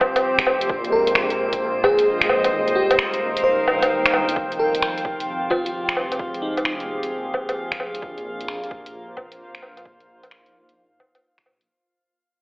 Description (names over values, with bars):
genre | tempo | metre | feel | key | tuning
future garage | 131 BPM | 4/4 | swing 65% on 16ths | F minor | A4 = 442 Hz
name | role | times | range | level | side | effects
tine electric piano | accompaniment | 0.0-11.7 s | Eb3 to Eb4 | -36 LUFS | equal | medium stereo tremolo, sidechain pumping, dub echo
warbly tape-like pad | sustained chords | 0.0-11.7 s | F3 to G5 | -25 LUFS | equal | chorus, built-in reverb, sidechain pumping
deep house drum kit | drums | 0.0-11.7 s | finger snaps, hi-hat, woodblock | -21 LUFS | equal | overdrive, studio reverb
electronic kick drum | drums | 0.0-11.4 s | none | -31 LUFS | equal | overdrive, studio reverb
drifting glass-harmonics texture | texture | 0.0-11.7 s | C4 to F5 | -30 LUFS | equal | chorus, built-in reverb
dark detuned saw bass | bass | 0.5-11.7 s | Eb1 to Eb2 | -34 LUFS | equal | tube saturation, sidechain pumping
bell-like FM electric piano | melody | 0.9-6.9 s | Eb4 to C5 | -23 LUFS | equal | chorus, tremolo, dub echo
room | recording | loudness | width
wet digital room reverb, RT60 1.2 s, digital ambience | telephone sound | -19 LUFS | side -36 dB against mid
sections
0.0-4.4 A section; 4.4-11.7 B section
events
kick drops out 2.5-4.4; fade-out 4.4-11.7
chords
0.0 Fsus2; 0.7 Bb9sus4; 2.5 Eb6; 4.4 Fm11; 8.0 Bb9sus4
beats
0.23 | 0.69 1.15 1.61 2.07 | 2.52 2.98 3.44 3.90 | 4.36 4.82 5.27 5.73 | 6.19 6.65 7.11 7.56 | 8.02 8.48 8.94 9.39 | 9.85 10.31 10.77 11.23